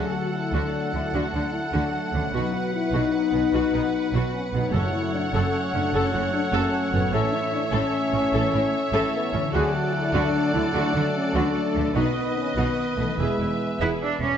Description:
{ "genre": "cinematic, heroic adventure film score", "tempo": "100 BPM (dotted quarters)", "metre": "12/8", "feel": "straight", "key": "unclear", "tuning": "A4 = 440 Hz", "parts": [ { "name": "clear symphonic violin section", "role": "melody", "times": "0.0-14.2 s", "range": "D5 to F#5", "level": "-34 LUFS", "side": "left 2 dB", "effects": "none" }, { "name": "clear symphonic violin section", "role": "second line", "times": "0.0-14.2 s", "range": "A4 to C#5", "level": "-34 LUFS", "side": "equal", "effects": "none" }, { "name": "warm clarinet", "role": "second line", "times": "0.0-14.2 s", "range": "A4 to B4", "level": "-36 LUFS", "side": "left 3 dB", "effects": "none" }, { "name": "warm oboe", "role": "second line", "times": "0.0-14.4 s", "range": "D5 to F#5", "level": "-32 LUFS", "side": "right 2 dB", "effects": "none" }, { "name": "rich symphonic viola section", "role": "accompaniment", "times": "0.0-14.3 s", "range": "A3 to A4", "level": "-31 LUFS", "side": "equal", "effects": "none" }, { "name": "dark French horn section", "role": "sustained chords", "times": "0.0-13.8 s", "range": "G#3 to G#4", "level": "-26 LUFS", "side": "left 4 dB", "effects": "none" }, { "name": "warm trombone section", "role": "sustained chords", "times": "0.0-14.2 s", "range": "D#3 to B3", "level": "-33 LUFS", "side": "right 4 dB", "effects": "none" }, { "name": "concert harp", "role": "arpeggios", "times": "0.0-14.4 s", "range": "F#2 to B4", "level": "-35 LUFS", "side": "left 7 dB", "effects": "none" }, { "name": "clear studio cello section", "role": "bass", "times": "0.5-14.4 s", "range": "E2 to E4", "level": "-30 LUFS", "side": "right 3 dB", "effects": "none" }, { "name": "clear symphonic double bass section", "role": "bass", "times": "0.5-14.3 s", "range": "E1 to D2", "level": "-29 LUFS", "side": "right 3 dB", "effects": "none" }, { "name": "timpani", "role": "percussion", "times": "4.7-5.3 s", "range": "F#2", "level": "-34 LUFS", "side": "left 1 dB", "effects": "none" } ], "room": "moderate scoring stage reverb, RT60 1.6 s", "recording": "nothing above 7.9 kHz", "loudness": "-21 LUFS", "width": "side -8 dB against mid", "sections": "0.0-14.4 A section", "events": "none", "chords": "0.0 D; 2.3 B; 4.7 F#m; 7.1 A; 9.5 D; 12.0 B; 13.2 E", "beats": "0.53 1.14 1.73 | 2.34 2.94 3.53 4.13 | 4.73 5.33 5.93 6.53 | 7.13 7.73 8.33 8.94 | 9.54 10.14 10.75 11.35 | 11.96 12.56 13.18 13.80" }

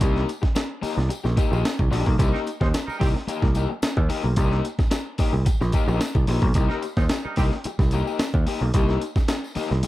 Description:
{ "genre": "funk", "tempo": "110 BPM", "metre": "4/4", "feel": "straight", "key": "C minor", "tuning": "A4 = 440 Hz", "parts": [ { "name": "raw garage guitar", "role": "accompaniment", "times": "0.0-9.9 s", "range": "Bb3 to G4", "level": "-28 LUFS", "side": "left 5 dB", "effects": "overdrive" }, { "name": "picked electric bass", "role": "bass", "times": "0.0-9.8 s", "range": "Bb1 to Eb2", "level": "-23 LUFS", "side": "equal", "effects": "none" }, { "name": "breakbeat sampler-style drum kit", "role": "drums", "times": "0.0-9.9 s", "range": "hi-hat, kick drum, snare drum", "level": "-23 LUFS", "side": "equal", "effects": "none" }, { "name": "tambourine", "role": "percussion", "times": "0.0-9.9 s", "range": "none", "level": "-43 LUFS", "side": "left 3 dB", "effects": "none" }, { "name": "clear horn section", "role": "second line", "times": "2.3-3.1, 6.7-7.5 s", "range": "Eb3 to C5", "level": "-33 LUFS", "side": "right 2 dB", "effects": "none" } ], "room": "little or no reverb", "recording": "dark, warm production", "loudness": "-20 LUFS", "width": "side -16 dB against mid", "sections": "0.0-9.9 A section", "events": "none", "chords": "0.0 Cm7", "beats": "| 0.01 0.56 1.10 1.65 | 2.19 2.74 3.28 3.83 | 4.37 4.92 5.46 6.01 | 6.56 7.10 7.65 8.19 | 8.74 9.28 9.83" }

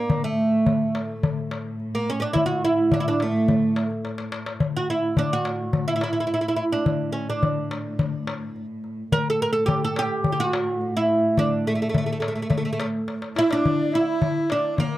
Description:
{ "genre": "Turkish makam ensemble", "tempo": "106 BPM", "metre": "4/4", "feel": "straight", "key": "A makam hicaz", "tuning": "A4 = 442 Hz", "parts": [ { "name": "oud", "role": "melody", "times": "0.0-15.0 s", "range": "A3 to Bb4", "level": "-23 LUFS", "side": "right 2 dB", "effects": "none" }, { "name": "dark studio cello section", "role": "drone", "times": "0.0-13.7 s", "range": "A2", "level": "-31 LUFS", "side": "equal", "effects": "none" }, { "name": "darbuka", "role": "percussion", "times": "0.1-14.9 s", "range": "none", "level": "-26 LUFS", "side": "left 3 dB", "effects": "none" }, { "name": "breathy low ney", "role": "second line", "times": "13.4-15.0 s", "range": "Bb4 to F#5-43c", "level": "-33 LUFS", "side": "left 6 dB", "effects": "none" }, { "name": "rich cello", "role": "second line", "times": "13.4-15.0 s", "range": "Bb3 to E4", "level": "-28 LUFS", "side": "left 4 dB", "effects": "none" } ], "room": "light reverb", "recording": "dry, close 1970s-style studio recording", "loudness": "-21 LUFS", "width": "side -15 dB against mid", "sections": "0.0-13.6 A section; 13.6-15.0 B section", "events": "drum fill 4.0-4.6, 13.1-13.6", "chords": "none", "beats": "| 0.11 0.67 1.23 1.80 | 2.36 2.92 3.49 4.05 | 4.61 5.17 5.74 6.30 | 6.86 7.43 7.99 8.55 | 9.12 9.68 10.25 10.81 | 11.38 11.94 12.51 13.08 | 13.64 14.21 14.78" }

